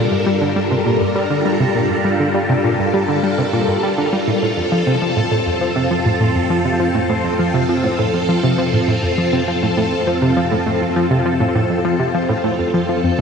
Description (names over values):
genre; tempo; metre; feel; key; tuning
ambient, sequencer-driven space music; 101 BPM; 4/4; straight; unclear; A4 = 440 Hz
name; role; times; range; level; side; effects
phased string machine; sustained chords; 0.0-13.2 s; G3 to Bb4; -18 LUFS; equal; ensemble chorus, phaser
tight sequenced synth; riff; 0.0-13.2 s; F2 to G3; -18 LUFS; equal; chorus, ping-pong delay
analog drone; bass; 0.0-13.2 s; F2 to G2; -27 LUFS; equal; chorus
room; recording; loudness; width
wet huge ambient reverb, RT60 8.0 s; none; -15 LUFS; side -6 dB against mid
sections
0.0-13.2 A section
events
none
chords
0.0 Gm7; 4.3 F